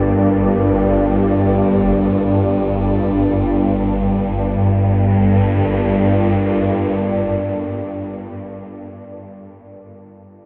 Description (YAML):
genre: dark ambient drone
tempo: free time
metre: none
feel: none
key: G minor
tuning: A4 = 441 Hz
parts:
  - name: deep dark ambient pad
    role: sustained chords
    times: 0.0-8.1 s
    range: G3 to D5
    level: -22 LUFS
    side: equal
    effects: chorus, built-in reverb
  - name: swarming drone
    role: drone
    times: 0.0-7.6 s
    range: G1 to G2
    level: -19 LUFS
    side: equal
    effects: built-in reverb
  - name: bubbling stepped-filter texture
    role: texture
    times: 0.0-4.4 s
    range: D5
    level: -38 LUFS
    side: equal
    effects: chorus, built-in reverb
room: wet huge ambient reverb, RT60 8.9 s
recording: none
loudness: -16 LUFS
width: mono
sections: 0.0-4.4 A section; 4.4-8.6 B section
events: fade-out on synth texture 0.0-4.4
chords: 0.0 Gm